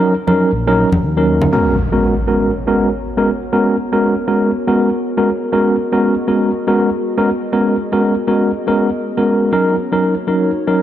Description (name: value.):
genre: deep house.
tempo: 120 BPM.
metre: 4/4.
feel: swing 59% on 16ths.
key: G# minor.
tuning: A4 = 438 Hz.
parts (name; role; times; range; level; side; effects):
tine electric piano; stabs; 0.0-10.8 s; F#3 to A#4; -14 LUFS; equal; medium stereo tremolo, low-pass filter, analog delay.
congas; percussion; 0.3-1.5 s; none; -20 LUFS; left 1 dB; none.
smooth gliding synth bass; bass; 0.5-1.5 s; D#1 to D#2; -18 LUFS; equal; none.
warbly tape-like pad; sustained chords; 2.3-10.8 s; A#3 to D#5; -23 LUFS; left 2 dB; chorus, built-in reverb.
impact; sound effects; 1.5-3.5 s; none; -21 LUFS; equal; none.
room: moderate lush hall reverb, RT60 2.8 s.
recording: dry, gritty hardware recording.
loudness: -13 LUFS.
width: side -11 dB against mid.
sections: 0.0-1.5 A section; 1.5-10.8 B section.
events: impact 1.5-3.5; filter sweep on tine electric piano 1.5-10.8.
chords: 0.0 D#m7; 1.5 G#m11; 9.5 D#m7.